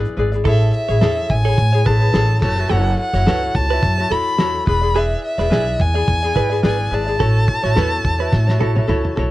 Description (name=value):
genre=acoustic pop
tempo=107 BPM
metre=4/4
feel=swing 55% on 16ths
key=A major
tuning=A4 = 440 Hz
part: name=ukulele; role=accompaniment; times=0.0-9.3 s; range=E4 to D5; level=-22 LUFS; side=left 3 dB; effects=none
part: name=direct-recorded clean electric guitar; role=arpeggios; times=0.0-9.0 s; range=G#4 to C#5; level=-25 LUFS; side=right 10 dB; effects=phaser
part: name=upright bass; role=bass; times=0.0-9.3 s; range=E1 to A2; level=-18 LUFS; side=equal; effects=none
part: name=cloth-damped thuddy drum kit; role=drums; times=0.0-9.3 s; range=crash cymbal, kick drum, shaker, snare drum, toms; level=-21 LUFS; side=equal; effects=none
part: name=warm violin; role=melody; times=0.5-9.2 s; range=E5 to B5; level=-21 LUFS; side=left 1 dB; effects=none
room=little or no reverb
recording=cassette tape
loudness=-15 LUFS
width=side -16 dB against mid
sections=0.0-9.3 A section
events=drum fill 8.3-9.3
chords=0.5 Amaj7; 2.4 F#m7; 4.7 E7; 7.2 A6